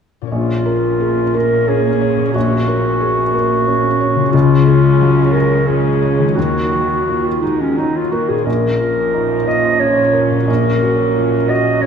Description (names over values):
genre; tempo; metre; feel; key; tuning
cinematic, emotional film score for orchestra; 89 BPM; 3/4; rubato; Bb minor; A4 = 440 Hz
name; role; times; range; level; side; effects
concert harp; arpeggios; 0.2-11.9 s; Bb2 to Db5; -20 LUFS; left 8 dB; none
mellow clarinet; second line; 0.3-11.9 s; Db4 to Eb5; -16 LUFS; equal; none
dark studio viola section; accompaniment; 0.3-11.9 s; F3 to Db4; -23 LUFS; right 3 dB; none
felt-muted upright piano; accompaniment; 0.3-11.9 s; Bb1 to Db5; -18 LUFS; equal; none
warm studio cello section; bass; 0.3-11.9 s; Bb2 to Eb3; -22 LUFS; right 5 dB; none
room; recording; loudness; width
wet scoring stage reverb, RT60 1.6 s; dark, warm production; -12 LUFS; side -7 dB against mid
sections
0.3-11.9 A section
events
none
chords
0.3 Bbm; 4.3 Db; 6.4 Ebm; 8.5 Bbm; 10.5 Gb/Bb